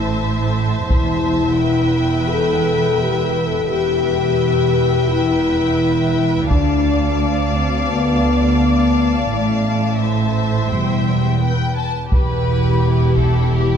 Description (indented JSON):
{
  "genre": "cinematic, epic orchestral film score",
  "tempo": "86 BPM",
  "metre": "4/4",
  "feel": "straight",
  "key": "E phrygian",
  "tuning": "A4 = 436 Hz",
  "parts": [
    { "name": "warm symphonic violin section", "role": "melody", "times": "0.0-13.8 s", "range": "G4 to A5", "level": "-28 LUFS", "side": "left 6 dB", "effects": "none" },
    { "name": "warm symphonic violin section", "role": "second line", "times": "0.0-13.8 s", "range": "E4 to A5", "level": "-27 LUFS", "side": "left 3 dB", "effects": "none" },
    { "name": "dark symphonic viola section", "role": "accompaniment", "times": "0.0-13.8 s", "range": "G4 to D5", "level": "-26 LUFS", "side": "equal", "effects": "none" },
    { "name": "mellow French horn section", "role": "sustained chords", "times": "0.0-11.4 s", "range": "G3 to B4", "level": "-18 LUFS", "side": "left 4 dB", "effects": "none" },
    { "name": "warm symphonic cello section", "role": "bass", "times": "0.0-13.8 s", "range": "D2 to A2", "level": "-23 LUFS", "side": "right 3 dB", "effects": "none" },
    { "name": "warm symphonic double bass section", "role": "bass", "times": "0.0-13.8 s", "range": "E1 to D2", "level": "-20 LUFS", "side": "right 3 dB", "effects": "none" },
    { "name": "solo taiko drums", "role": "drums", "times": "0.9-2.3, 6.5-7.9, 12.1-13.5 s", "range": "none", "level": "-20 LUFS", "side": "equal", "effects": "none" }
  ],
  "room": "moderate scoring stage reverb, RT60 1.9 s",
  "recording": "dark, warm production",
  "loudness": "-15 LUFS",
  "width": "side -7 dB against mid",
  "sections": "0.0-12.1 A section; 12.1-13.8 A section",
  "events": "none",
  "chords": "0.0 Am; 0.9 Em; 6.5 Dm; 9.3 Am; 10.7 Em",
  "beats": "0.19 | 0.89 1.59 2.29 3.00 | 3.70 4.40 5.10 5.80 | 6.50 7.20 7.90 8.61 | 9.31 10.01 10.71 11.41 | 12.12 12.82 13.52"
}